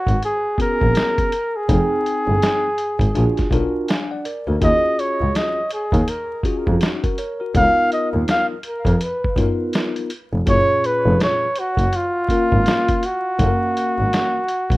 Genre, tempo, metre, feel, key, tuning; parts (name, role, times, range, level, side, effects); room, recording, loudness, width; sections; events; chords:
hip hop, jazz-hop; 82 BPM; 4/4; swing 60% on 16ths; F# major; A4 = 440 Hz
breathy flugelhorn; melody; 0.0-14.8 s; E#4 to E#5; -20 LUFS; equal; analog delay
clear double bass; bass; 0.1-14.8 s; E#1 to F#2; -19 LUFS; equal
lo-fi sampler-style drum kit; drums; 0.1-14.8 s; hi-hat, kick drum, snare drum; -22 LUFS; equal; vintage 12-bit sampler grit
tine electric piano; accompaniment; 0.6-14.4 s; A#2 to G#5; -24 LUFS; left 1 dB; slow stereo tremolo
light reverb; rough home demo mix, vinyl crackle; -17 LUFS; side -19 dB against mid
0.0-14.8 A section
0.0 G#m11; 1.7 Fm7 (rootless); 3.2 A#7b13; 4.6 D#m11; 7.5 C#13 (rootless); 10.5 F#maj9